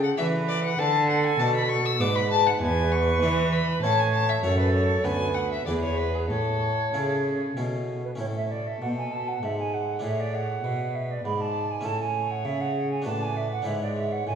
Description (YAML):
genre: classical, baroque-style sonata movement with continuo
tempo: 99 BPM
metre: 3/4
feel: straight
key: A major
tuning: A4 = 440 Hz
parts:
  - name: warm violin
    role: melody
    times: 0.0-14.4 s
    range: G#4 to E6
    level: -29 LUFS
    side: left 6 dB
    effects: none
  - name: harpsichord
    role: accompaniment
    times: 0.0-14.4 s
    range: D2 to B4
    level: -32 LUFS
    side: left 1 dB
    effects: none
  - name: rich cello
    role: bass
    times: 0.0-14.4 s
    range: D2 to E3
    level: -27 LUFS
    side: right 1 dB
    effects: none
  - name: silver concert flute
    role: second line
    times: 0.2-14.3 s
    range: A4 to B5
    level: -28 LUFS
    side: right 5 dB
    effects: none
room: wet recital hall reverb, RT60 1.8 s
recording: heard from further back in the room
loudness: -23 LUFS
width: side -7 dB against mid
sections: 0.0-8.2 A section; 8.2-14.4 B section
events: none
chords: 0.0 D; 0.8 Bm7; 2.6 E5; 3.8 A; 4.4 F#m; 5.0 Bm7/D; 5.7 E; 6.3 A; 10.0 E7/A; 11.8 A; 13.1 Bm7/A; 13.7 E7/G#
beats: 0.18 | 0.79 1.40 2.00 | 2.61 3.23 3.83 | 4.43 5.04 5.67 | 6.30 6.94 7.57 | 8.20 8.81 9.43 | 10.04 10.64 11.25 | 11.85 12.45 13.06 | 13.66 14.27